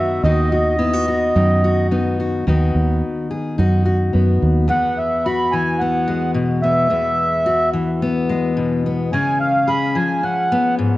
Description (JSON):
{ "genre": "acoustic folk duo or small band", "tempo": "108 BPM", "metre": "4/4", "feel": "straight", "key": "E major", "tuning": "A4 = 440 Hz", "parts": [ { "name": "mellow accordion", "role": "melody", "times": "0.0-10.7 s", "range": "D#5 to B5", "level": "-19 LUFS", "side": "right 1 dB", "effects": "none" }, { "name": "fingerpicked steel-string acoustic guitar", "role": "accompaniment", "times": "0.0-11.0 s", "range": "E2 to G#4", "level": "-19 LUFS", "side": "left 2 dB", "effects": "none" }, { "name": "fingered electric bass", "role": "bass", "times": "0.0-4.7 s", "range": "D#2 to F#2", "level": "-17 LUFS", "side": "right 1 dB", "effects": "none" } ], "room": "moderate concert hall reverb, RT60 2.2 s", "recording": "worn, warbling old tape, cassette tape, warbly pitch drift", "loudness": "-15 LUFS", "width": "side -17 dB against mid", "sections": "0.0-2.5 A section; 2.5-4.7 B section; 4.7-11.0 C section", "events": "none", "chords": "0.0 B/D#; 4.7 Eadd9; 9.1 C#7" }